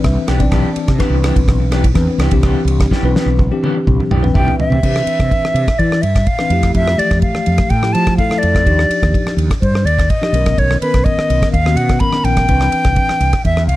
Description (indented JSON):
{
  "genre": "electric jazz fusion",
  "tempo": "125 BPM",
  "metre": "4/4",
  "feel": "straight",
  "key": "C major",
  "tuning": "A4 = 440 Hz",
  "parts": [
    { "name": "bell-like tine electric piano", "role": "accompaniment", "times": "0.0-13.3 s", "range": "D#3 to A5", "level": "-19 LUFS", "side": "left 2 dB", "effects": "fast stereo tremolo" },
    { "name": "mellow fretless electric bass", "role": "bass", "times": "0.0-13.8 s", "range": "A#1 to F3", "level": "-16 LUFS", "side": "equal", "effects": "analog chorus" },
    { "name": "damped 70s drum kit", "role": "drums", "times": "0.0-13.8 s", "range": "crash cymbal, kick drum, ride cymbal, rim click, snare drum, toms", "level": "-17 LUFS", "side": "equal", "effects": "none" },
    { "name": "electric guitar at the edge of break-up", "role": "stabs", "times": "0.2-4.8 s", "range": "E3 to G4", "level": "-23 LUFS", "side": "equal", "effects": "lush chorus" },
    { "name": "breathy bright silver concert flute", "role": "melody", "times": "4.4-13.8 s", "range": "B4 to B5", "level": "-17 LUFS", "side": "equal", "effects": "none" }
  ],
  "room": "little or no reverb",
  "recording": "dark, warm production",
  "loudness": "-12 LUFS",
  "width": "side -16 dB against mid",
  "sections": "0.0-4.8 A section; 4.8-13.8 B section",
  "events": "tine electric piano fill 0.0-1.0, 3.9-4.8; drum fill 2.9-4.8",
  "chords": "0.0 Cmaj9; 6.5 Fmaj9; 8.7 Ebmaj9; 10.3 Bmaj9; 12.5 Cmaj9",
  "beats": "0.04 0.52 | 1.00 1.48 1.96 2.44 | 2.92 3.39 3.87 4.35 | 4.83 5.31 5.79 6.27 | 6.75 7.23 7.71 8.18 | 8.66 9.14 9.62 10.10 | 10.58 11.06 11.54 12.02 | 12.49 12.97 13.45"
}